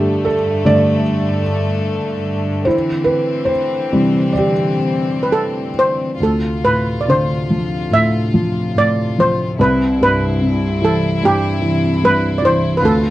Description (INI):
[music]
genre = celtic folk, Celtic slow air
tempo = 64-76 BPM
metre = 4/4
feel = rubato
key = unclear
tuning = A4 = 440 Hz
[part]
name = felt-muted upright piano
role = accompaniment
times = 0.0-13.1 s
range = C2 to D5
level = -16 LUFS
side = equal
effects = none
[part]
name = rich chamber string section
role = sustained chords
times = 0.0-13.1 s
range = D2 to F4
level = -22 LUFS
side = left 2 dB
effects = none
[part]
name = steel pan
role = melody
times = 5.2-13.1 s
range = G4 to E5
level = -16 LUFS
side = right 1 dB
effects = none
[sound]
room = light reverb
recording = dry, close 1970s-style studio recording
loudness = -14 LUFS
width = side -15 dB against mid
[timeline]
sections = 0.0-6.2 A section; 6.2-13.1 B section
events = felt piano solo 0.0-6.2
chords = 0.0 Gsus2; 2.7 Cadd9; 6.2 Dm7; 9.6 Cmaj7